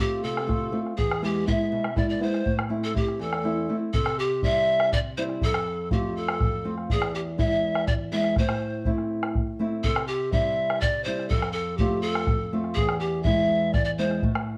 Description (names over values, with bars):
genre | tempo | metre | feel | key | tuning
andean folk, Andean ensemble | 81 BPM (dotted quarters) | 6/8 | straight | unclear | A4 = 441 Hz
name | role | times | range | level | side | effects
breathy pan flute | melody | 0.0-14.3 s | G4 to E5 | -29 LUFS | equal | plate reverb
nylon-string guitar | accompaniment | 0.0-14.6 s | E2 to F4 | -31 LUFS | equal | none
bombo | percussion | 0.4-14.5 s | none | -29 LUFS | equal | none
room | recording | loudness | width
moderate studio reverb, RT60 0.6 s | dark, warm production | -25 LUFS | mono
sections
0.0-3.9 A section; 3.9-14.6 A section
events
none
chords
0.0 F; 1.0 E; 2.5 Am; 3.9 C; 5.4 F; 6.9 E; 8.4 Am; 9.8 C; 11.3 F; 12.8 E